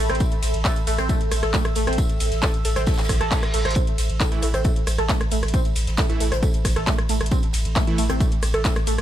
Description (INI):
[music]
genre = driving peak-time techno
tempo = 135 BPM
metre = 4/4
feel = straight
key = unclear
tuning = A4 = 439 Hz
[part]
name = saturated sub bass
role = bass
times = 0.0-9.0 s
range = A1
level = -24 LUFS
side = equal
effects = tube saturation, sidechain pumping, low-pass filter
[part]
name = warbly tape-like pad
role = texture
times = 0.0-9.0 s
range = A4 to E6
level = -33 LUFS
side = right 2 dB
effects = chorus, built-in reverb, sidechain pumping
[part]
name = overdriven synth lead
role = riff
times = 0.1-8.9 s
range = A3 to A4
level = -28 LUFS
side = right 1 dB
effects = phaser, sidechain pumping, digital delay
[part]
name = techno drum kit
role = drums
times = 0.1-9.0 s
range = handclaps, hi-hat, ride cymbal, rim click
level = -27 LUFS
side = equal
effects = sidechain pumping on hats, sidechain pumping on cymbals
[part]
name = electronic kick drum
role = drums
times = 0.2-8.7 s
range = none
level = -22 LUFS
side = equal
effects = none
[part]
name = unplugged drum kit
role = drums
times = 0.2-9.0 s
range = hi-hat, snare drum, tambourine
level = -37 LUFS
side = equal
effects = high-pass filter on hats, high-pass filter on snare, high-pass filter on perc, high-pass filter on room
[part]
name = reverse cymbal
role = sound effects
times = 3.0-3.8 s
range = none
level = -33 LUFS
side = equal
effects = none
[part]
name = supersaw stab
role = stabs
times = 4.3-8.0 s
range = E3 to E4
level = -30 LUFS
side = right 4 dB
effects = cassette tape, sidechain pumping, digital delay
[sound]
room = digital ambience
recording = none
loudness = -19 LUFS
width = side -12 dB against mid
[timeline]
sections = 0.0-9.0 A section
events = reverse cymbal 3.0-3.8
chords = 0.0 A5